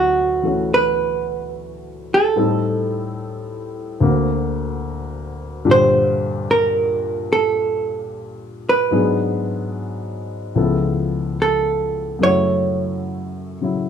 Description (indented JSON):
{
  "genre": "jazz ballad",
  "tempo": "73 BPM",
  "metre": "4/4",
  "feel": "swing 68% on 8ths",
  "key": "D major",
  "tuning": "A4 = 439 Hz",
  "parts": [
    { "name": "vintage hollow-body jazz guitar", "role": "melody", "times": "0.0-13.6 s", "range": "F#4 to C#5", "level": "-18 LUFS", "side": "right 3 dB", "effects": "none" },
    { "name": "warm baby grand piano", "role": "accompaniment", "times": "0.0-13.9 s", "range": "C#2 to A4", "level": "-21 LUFS", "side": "left 2 dB", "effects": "none" }
  ],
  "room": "light reverb",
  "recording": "dark, warm production",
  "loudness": "-17 LUFS",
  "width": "side -8 dB against mid",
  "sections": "0.0-13.9 A section",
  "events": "none",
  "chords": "0.0 D69; 2.4 Am7b5; 4.0 D7b13; 5.7 Gm9; 8.9 G#m7b5; 10.6 C#7alt; 12.2 F#m7",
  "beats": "0.72 1.54 | 2.37 3.19 4.01 4.83 | 5.65 6.47 7.28 8.10 | 8.92 9.74 10.57 11.39 | 12.22 13.05 13.87"
}